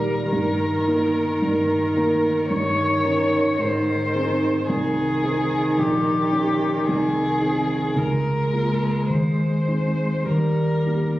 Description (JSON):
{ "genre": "quick classical-period movement for piano trio", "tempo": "109 BPM", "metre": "4/4", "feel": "straight", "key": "Ab major", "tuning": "A4 = 442 Hz", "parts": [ { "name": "muted violin", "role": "melody", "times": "0.0-11.2 s", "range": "G4 to Db5", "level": "-25 LUFS", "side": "left 2 dB", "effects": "none" }, { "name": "muted cello", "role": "second line", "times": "0.0-11.2 s", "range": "Eb3 to Ab3", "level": "-24 LUFS", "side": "right 2 dB", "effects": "none" }, { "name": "dark concert grand piano", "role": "accompaniment", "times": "0.0-11.2 s", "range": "Bb1 to Bb4", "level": "-22 LUFS", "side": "equal", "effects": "none" } ], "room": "moderate scoring stage reverb, RT60 1.6 s", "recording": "recorded on a phone in the room, club reverb, compression", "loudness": "-19 LUFS", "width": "side -16 dB against mid", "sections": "0.0-11.2 A section", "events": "none", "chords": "0.3 Eb/G; 2.5 Eb7/G; 3.6 Ab; 4.7 Ab/C; 5.8 Eb7/Bb; 6.9 Ab/C; 8.0 Bbm7/Db; 9.1 Ab/Eb; 10.3 Eb" }